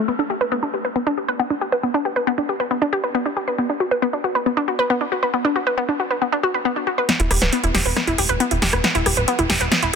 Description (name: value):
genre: uplifting trance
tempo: 137 BPM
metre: 4/4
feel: straight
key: unclear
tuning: A4 = 439 Hz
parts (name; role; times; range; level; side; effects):
- wide unison pluck; arpeggios; 0.1-9.9 s; B3 to B4; -19 LUFS; left 1 dB; auto-pan, ping-pong delay
- big-room dance drum kit; drums; 7.1-9.9 s; hi-hat, rim click, snare drum; -20 LUFS; right 1 dB; none
- tight sequencer bass; bass; 7.2-9.9 s; D1 to E1; -22 LUFS; right 1 dB; none
room: light reverb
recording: dense, heavily limited modern master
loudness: -18 LUFS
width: side -6 dB against mid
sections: 0.0-7.1 A section; 7.1-10.0 B section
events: filter sweep on synth arpeggio sound 0.0-7.1; build-up 7.1-10.0; drum fill 7.1-10.0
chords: 0.1 G; 3.6 Bm; 7.1 Em